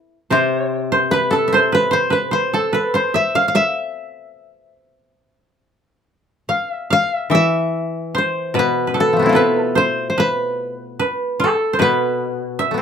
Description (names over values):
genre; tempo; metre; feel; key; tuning
japanese traditional, Japanese chamber music; 73 BPM; 4/4; uneven beats, rubato; E miyako bushi; A4 = 440 Hz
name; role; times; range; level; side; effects
koto; melody; 0.0-12.8 s; F3 to F5; -18 LUFS; left 1 dB; none
koto; second line; 0.0-12.8 s; E4 to F5; -20 LUFS; right 3 dB; none
koto; accompaniment; 0.3-12.8 s; B2 to E3; -22 LUFS; left 3 dB; none
room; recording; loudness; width
moderate studio reverb, RT60 0.5 s; none; -16 LUFS; side -7 dB against mid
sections
0.0-6.9 A section; 6.9-12.8 B section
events
none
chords
none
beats
| 0.32 1.12 1.92 2.72 | 3.52 4.34 5.19 6.04 | 6.89 7.74 8.56 9.37 | 10.19 11.00 11.80 12.60